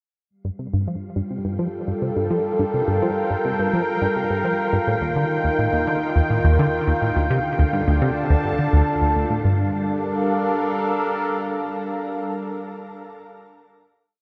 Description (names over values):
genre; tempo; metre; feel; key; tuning
ambient, sequencer-driven space music; 105 BPM; 4/4; straight; G minor; A4 = 440 Hz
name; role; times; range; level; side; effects
sweeping resonant pad; sustained chords; 0.3-12.5 s; D3 to A5; -25 LUFS; equal; lush chorus, shimmer reverb
wind-like tuned noise texture; texture; 1.7-9.5 s; F5; -38 LUFS; equal; built-in reverb, shimmer reverb
tight sequenced synth; riff; 0.4-9.7 s; D2 to F3; -24 LUFS; equal; chorus, phaser, delay
room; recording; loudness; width
wet huge ambient reverb, RT60 9.1 s; none; -22 LUFS; mono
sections
0.3-9.4 A section; 9.4-11.7 final chord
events
fade-in on synth texture 0.3-9.4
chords
0.3 Gm7; 4.9 Ebadd9; 7.2 Dm; 9.4 Gm7